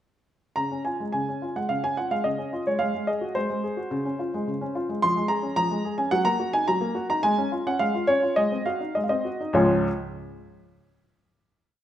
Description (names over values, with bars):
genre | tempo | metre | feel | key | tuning
classical-period piano sonatina | 107 BPM | 4/4 | rubato | Db major | A4 = 439 Hz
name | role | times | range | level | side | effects
warm baby grand piano | solo | 0.6-9.9 s | Db2 to C6 | -23 LUFS | equal | none
room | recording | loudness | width
moderate recital hall reverb, RT60 1.5 s | none | -23 LUFS | side -11 dB against mid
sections
0.6-9.5 A section; 9.5-11.8 final chord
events
none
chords
0.6 Db; 2.8 Ab7; 3.9 Db; 5.0 Db/F; 6.1 Ebm/Gb; 7.2 Db/Ab; 8.4 Ab7; 9.5 Db